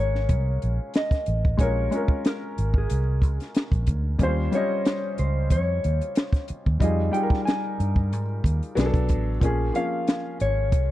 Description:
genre	R&B, neo-soul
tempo	92 BPM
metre	4/4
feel	swing 55% on 16ths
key	Bb dorian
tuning	A4 = 440 Hz
part	mellow electric guitar	melody	0.0-10.9 s	Ab4 to Ab5	-29 LUFS	left 1 dB	none
part	warm upright piano	accompaniment	0.0-10.9 s	F3 to Eb5	-29 LUFS	left 2 dB	none
part	vintage muted fingered electric bass	bass	0.0-10.9 s	Ab1 to Ab2	-24 LUFS	equal	none
part	compact cocktail drum kit	drums	0.2-10.9 s	hi-hat, kick drum, snare drum	-22 LUFS	equal	none
room	studio reverb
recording	dry, close 1970s-style studio recording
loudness	-22 LUFS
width	side -15 dB against mid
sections	0.0-10.9 A section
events	none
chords	0.0 Bbm7; 4.2 Eb13; 6.8 Fm9; 8.8 Bm7; 9.4 Bbm7

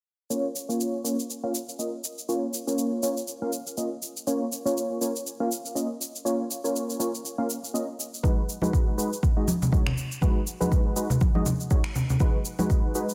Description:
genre	afro house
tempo	121 BPM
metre	4/4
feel	swing 57% on 16ths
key	unclear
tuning	A4 = 441 Hz
part	warm analog keys	stabs	0.3-13.1 s	G#3 to E#5	-31 LUFS	equal	chorus, sidechain pumping, low-pass filter, digital delay
part	electronic shaker and finger snaps	drums	0.3-13.1 s	none	-36 LUFS	equal	none
part	electronic kick drum	drums	8.2-12.8 s	none	-25 LUFS	equal	none
part	congas	percussion	8.2-12.7 s	none	-30 LUFS	equal	none
room	light reverb, digital ambience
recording	none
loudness	-27 LUFS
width	mono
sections	0.3-13.1 A section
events	none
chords	0.3 A#m; 8.2 G#m7

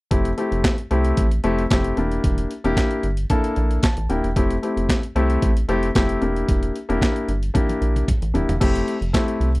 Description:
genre	early-eighties boogie funk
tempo	113 BPM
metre	4/4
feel	straight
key	F major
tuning	A4 = 437 Hz
part	warm grand piano	accompaniment	0.1-9.5 s	A3 to A5	-22 LUFS	left 2 dB	none
part	rubbery square bass	bass	0.1-9.6 s	Eb1 to C2	-22 LUFS	equal	none
part	breakbeat sampler-style drum kit	drums	0.1-9.6 s	crash cymbal, handclaps, hi-hat, kick drum, snare drum, toms	-21 LUFS	equal	none
room	little or no reverb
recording	dry, close 1970s-style studio recording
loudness	-18 LUFS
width	side -21 dB against mid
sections	0.1-8.6 A section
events	grand piano fill 3.6-4.4; drum fill 7.5-8.6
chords	0.1 Fmaj7; 2.0 Gm69; 4.4 Fmaj7; 6.2 Gm6; 8.6 Fmaj7

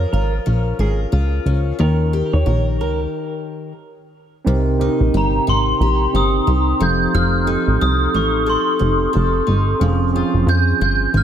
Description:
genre	indie pop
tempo	90 BPM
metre	4/4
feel	swing 60% on 16ths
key	unclear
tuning	A4 = 441 Hz
part	picked steel-string acoustic guitar	accompaniment	0.0-11.2 s	C3 to Bb4	-23 LUFS	left 6 dB	wide subtle chorus, warbly pitch drift
part	plucky analog bass	bass	0.0-11.2 s	F1 to F2	-17 LUFS	equal	none
part	electric guitar through a small old amp	second line	0.1-3.0 s	Ab4 to Db5	-26 LUFS	right 5 dB	wide subtle chorus, diffuse ambient delay
part	tine electric piano	accompaniment	4.4-11.2 s	C4 to C5	-22 LUFS	right 7 dB	overdrive
part	glockenspiel with soft plastic mallets	melody	5.2-11.2 s	Bb5 to G6	-21 LUFS	equal	analog chorus, diffuse ambient delay
room	moderate plate reverb, RT60 2.3 s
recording	dreamy mix soaked in reverb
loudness	-15 LUFS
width	side -9 dB against mid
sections	0.0-4.5 A section; 4.5-11.2 B section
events	stop 3.1-4.5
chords	0.0 Bbm7; 1.8 Eb7; 4.5 Cm7; 6.8 F7; 9.8 Bbm7/F (rootless)

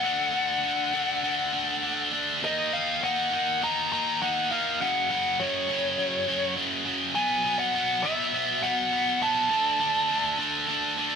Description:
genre	rock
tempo	102 BPM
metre	4/4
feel	straight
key	unclear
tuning	A4 = 439 Hz
part	dark smooth lead guitar	melody	0.0-11.2 s	C#5 to Bb5	-27 LUFS	left 1 dB	overdrive
part	high-gain distorted guitar	riff	0.0-11.2 s	F#2 to Eb4	-26 LUFS	right 1 dB	distortion
room	moderate stone room reverb, RT60 1.1 s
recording	band playing live in one room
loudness	-23 LUFS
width	side -6 dB against mid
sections	0.0-11.2 A section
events	half time 0.0-11.2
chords	0.0 D; 2.4 Eb5; 4.8 F#5; 7.2 B5; 9.5 D5

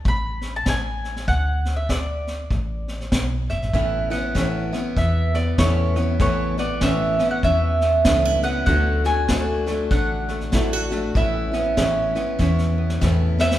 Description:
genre	acoustic folk duo or small band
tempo	97 BPM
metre	4/4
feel	swing 60% on 8ths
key	A major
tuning	A4 = 440 Hz
part	vintage brush drum kit	drums	0.0-13.6 s	kick drum, snare drum	-25 LUFS	equal	none
part	mandolin	melody	0.1-13.6 s	C#5 to B5	-24 LUFS	right 2 dB	none
part	woody fretless electric bass	bass	0.1-13.6 s	F#1 to E2	-24 LUFS	equal	none
part	picked steel-string acoustic guitar	accompaniment	3.7-13.6 s	A2 to F#4	-26 LUFS	left 3 dB	none
part	open-back banjo	arpeggios	3.7-13.6 s	D3 to F#4	-29 LUFS	right 3 dB	none
room	moderate scoring stage reverb, RT60 1.9 s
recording	recorded in a church or concert hall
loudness	-19 LUFS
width	side -13 dB against mid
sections	0.0-13.6 A section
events	drum fill 12.4-13.6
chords	0.0 D5; 3.7 Aadd9; 8.7 D; 11.2 Aadd9

